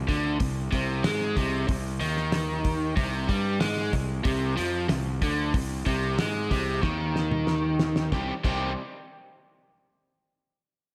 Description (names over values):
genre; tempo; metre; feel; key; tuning
classic rock; 93 BPM; 4/4; straight; C minor; A4 = 442 Hz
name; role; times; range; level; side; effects
fuzz fingered electric bass; bass; 0.0-8.7 s; C2 to Ab2; -33 LUFS; equal; overdrive
overdriven electric guitar; riff; 0.1-8.7 s; C3 to G4; -30 LUFS; equal; slapback echo
damped 70s drum kit; drums; 0.1-8.6 s; crash cymbal, hi-hat, kick drum, snare drum, toms; -32 LUFS; equal; none
room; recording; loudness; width
moderate lush hall reverb, RT60 1.9 s; big arena sound; -27 LUFS; mono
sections
0.0-8.1 A section; 8.1-10.7 B section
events
drum fill 6.8-8.1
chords
0.0 Cm